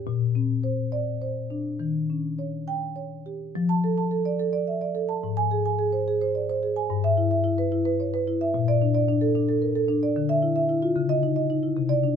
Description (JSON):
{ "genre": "classical, contemporary piece for solo marimba", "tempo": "67-76 BPM (dotted quarters)", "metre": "6/8", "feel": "rubato", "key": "unclear", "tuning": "A4 = 442 Hz", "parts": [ { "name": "marimba with soft mallets", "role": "solo", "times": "0.0-12.2 s", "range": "G2 to A5", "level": "-22 LUFS", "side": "left 1 dB", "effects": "none" } ], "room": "moderate studio reverb, RT60 0.5 s", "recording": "minimal, uncompressed stereo recording", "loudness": "-22 LUFS", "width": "side -7 dB against mid", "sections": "0.0-3.6 A section; 3.6-12.2 B section", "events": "none", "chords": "0.1 Bbadd9; 1.8 Eb7; 3.6 F6; 5.2 Ab; 6.9 G6; 8.5 Bbmaj7; 10.2 Dmadd9; 11.0 Dbmadd9" }